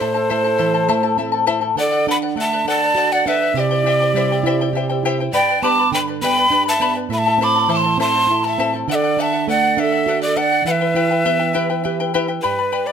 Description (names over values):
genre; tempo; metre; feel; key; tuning
andean folk, Andean ensemble; 68 BPM (dotted quarters); 6/8; straight; E minor; A4 = 445 Hz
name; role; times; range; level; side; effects
breathy quena; melody; 0.0-12.9 s; B4 to D6; -18 LUFS; equal; plate reverb
breathy bright polished pan flute; second line; 0.0-12.1 s; G4 to B5; -22 LUFS; right 4 dB; none
charango; accompaniment; 0.0-12.9 s; E4 to B5; -21 LUFS; left 7 dB; none
nylon-string guitar; accompaniment; 0.0-12.9 s; G2 to G4; -23 LUFS; right 7 dB; none
room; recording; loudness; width
moderate studio reverb, RT60 0.6 s; close, detailed microphones; -15 LUFS; side -7 dB against mid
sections
0.0-12.4 A section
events
none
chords
0.0 Am; 1.8 D; 3.6 C; 5.3 G; 7.1 Am; 8.9 D; 10.7 Em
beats
| 0.01 0.90 | 1.78 2.67 | 3.56 4.44 | 5.33 6.22 | 7.11 7.99 | 8.88 9.77 | 10.65 11.54 | 12.43